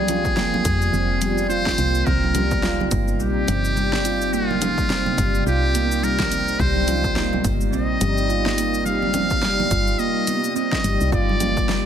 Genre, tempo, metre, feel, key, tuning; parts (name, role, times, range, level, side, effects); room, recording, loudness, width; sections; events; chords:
organic downtempo; 106 BPM; 4/4; swing 58% on 16ths; C minor; A4 = 441 Hz
trumpet with metal mute; melody; 0.0-11.9 s; F4 to F5; -24 LUFS; equal; tape echo
ethereal airy pad; sustained chords; 0.0-11.9 s; C3 to B5; -28 LUFS; left 1 dB; ensemble chorus, built-in reverb, sidechain pumping
handpan; arpeggios; 0.0-11.8 s; G3 to F4; -24 LUFS; right 2 dB; tape echo
woody FM bass; bass; 0.0-11.9 s; F1 to F2; -25 LUFS; equal; sidechain pumping
deep house drum kit; drums; 0.1-11.8 s; congas, hi-hat, shaker, snare drum; -27 LUFS; left 1 dB; overdrive
electronic kick drum; drums; 0.2-11.7 s; -26 LUFS; equal; overdrive
congas; percussion; 0.3-11.7 s; -31 LUFS; right 4 dB
light reverb, small room reverb; -18 LUFS; side -9 dB against mid
0.0-11.9 A section
0.0 Fmadd9; 2.1 Cm7; 11.1 G7